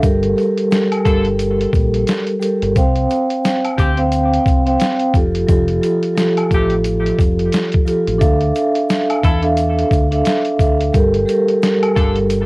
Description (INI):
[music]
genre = hip hop, boom-bap hip-hop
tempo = 88 BPM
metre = 4/4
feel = swing 60% on 16ths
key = D minor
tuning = A4 = 440 Hz
[part]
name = vibraphone with soft mallets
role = accompaniment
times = 0.0-12.5 s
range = F3 to G5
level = -15 LUFS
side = right 1 dB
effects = cassette tape, high-pass filter, low-pass filter
[part]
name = deep dub fingered electric bass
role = bass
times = 0.0-12.5 s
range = F1 to E2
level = -19 LUFS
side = equal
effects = transformer saturation
[part]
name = boom bap sampler-style drum kit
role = drums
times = 0.0-12.5 s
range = hi-hat, kick drum, snare drum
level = -17 LUFS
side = equal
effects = vintage 12-bit sampler grit
[part]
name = egg shaker and woodblock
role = percussion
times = 0.0-12.5 s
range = none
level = -30 LUFS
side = left 1 dB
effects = none
[part]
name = bright saxophone section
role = stabs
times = 1.0-12.2 s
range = C3 to A4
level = -24 LUFS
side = left 2 dB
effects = high-pass filter, low-pass filter, cassette tape, analog delay, plate reverb
[sound]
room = light reverb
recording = home recording on cassette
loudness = -13 LUFS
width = side -24 dB against mid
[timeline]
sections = 0.0-8.2 A section; 8.2-12.5 A section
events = none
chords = 0.0 Gmadd9; 2.8 Csus4; 5.1 Fadd9; 8.2 Dmadd9; 10.9 Gmadd9